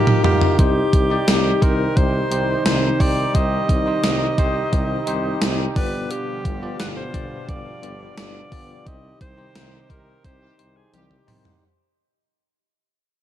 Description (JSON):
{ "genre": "1980s-style pop", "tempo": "87 BPM", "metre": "4/4", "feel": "straight", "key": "C minor", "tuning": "A4 = 442 Hz", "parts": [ { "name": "clear alto saxophone", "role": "melody", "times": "0.0-11.4 s", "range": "G4 to Eb5", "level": "-25 LUFS", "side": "right 1 dB", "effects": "none" }, { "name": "bell-like tine electric piano", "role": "accompaniment", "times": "0.0-11.6 s", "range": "B2 to D5", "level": "-25 LUFS", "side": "left 3 dB", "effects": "medium stereo tremolo" }, { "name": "gated 80s digital drum machine", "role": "drums", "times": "0.1-11.6 s", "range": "hi-hat, kick drum, snare drum, tambourine, toms", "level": "-19 LUFS", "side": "right 1 dB", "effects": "gated reverb, gated reverb snare, overdrive" }, { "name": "warm analog pad", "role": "sustained chords", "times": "0.6-11.6 s", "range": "B2 to G4", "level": "-29 LUFS", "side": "right 2 dB", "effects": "chorus" }, { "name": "warm tuba", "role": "bass", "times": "0.6-11.5 s", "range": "G1 to C2", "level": "-25 LUFS", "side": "equal", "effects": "none" }, { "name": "warm horn section", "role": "stabs", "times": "10.2-11.4 s", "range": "Eb3 to G4", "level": "-66 LUFS", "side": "right 1 dB", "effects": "none" } ], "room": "light reverb", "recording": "dark, warm production", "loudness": "-17 LUFS", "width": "side -11 dB against mid", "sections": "0.0-11.6 A section", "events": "fade-out 0.0-11.6; drum fill 0.0-0.6, 10.9-11.6; band accent 8.9-11.6", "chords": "0.0 Bbsus4; 0.6 Cm; 5.8 G7; 8.9 Cm" }